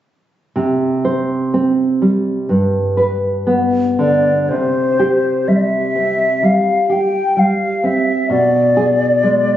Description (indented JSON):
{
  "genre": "romantic duo for flute and classical guitar",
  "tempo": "63 BPM",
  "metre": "4/4",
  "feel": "rubato",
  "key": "C major",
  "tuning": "A4 = 440 Hz",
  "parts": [
    { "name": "nylon-string guitar", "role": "accompaniment", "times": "0.6-9.6 s", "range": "G2 to C5", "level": "-15 LUFS", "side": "right 1 dB", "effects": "none" },
    { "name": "mellow hollow silver concert flute", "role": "melody", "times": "4.0-9.6 s", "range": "C5 to G5", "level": "-15 LUFS", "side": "left 1 dB", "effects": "none" }
  ],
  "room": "moderate recital hall reverb, RT60 1.6 s",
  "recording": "recorded on a phone in the room, club reverb, nothing above 7.9 kHz",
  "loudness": "-13 LUFS",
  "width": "side -11 dB against mid",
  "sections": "0.6-4.5 A section; 4.5-9.6 B section",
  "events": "none",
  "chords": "0.6 C5; 2.5 G; 4.5 C5; 8.3 Bm6"
}